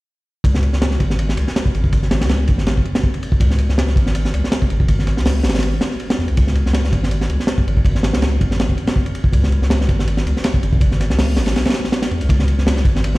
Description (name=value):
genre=drum and bass, jungle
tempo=162 BPM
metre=4/4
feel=swing 55% on 16ths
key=C# minor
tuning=A4 = 440 Hz
part: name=saturated sub bass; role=bass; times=0.4-13.2 s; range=G#1 to E2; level=-17 LUFS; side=equal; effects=none
part: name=crunchy breakbeat drum kit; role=drums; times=0.4-13.2 s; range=hi-hat, kick drum, ride cymbal, snare drum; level=-17 LUFS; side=equal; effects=none
room=light reverb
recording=played on a big sound system in a bare room, large studio reverb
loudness=-15 LUFS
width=side -20 dB against mid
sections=0.4-13.2 A section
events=break 11.6-12.3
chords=none